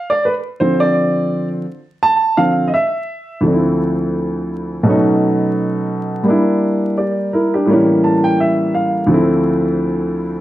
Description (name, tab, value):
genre	hip hop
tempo	85 BPM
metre	4/4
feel	swing 58% on 16ths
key	unclear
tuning	A4 = 442 Hz
part	dark upright piano	solo	0.0-10.4 s	D2 to A5	-14 LUFS	equal	slapback echo
room	moderate studio reverb, RT60 0.6 s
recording	vinyl crackle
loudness	-14 LUFS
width	side -14 dB against mid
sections	0.0-3.4 A section; 3.4-10.4 B section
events	upright piano solo 0.0-3.4; upright piano fill 7.7-9.1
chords	0.0 Dm7; 4.8 B7; 6.3 Em7b5; 7.7 A7b9; 9.1 Dm7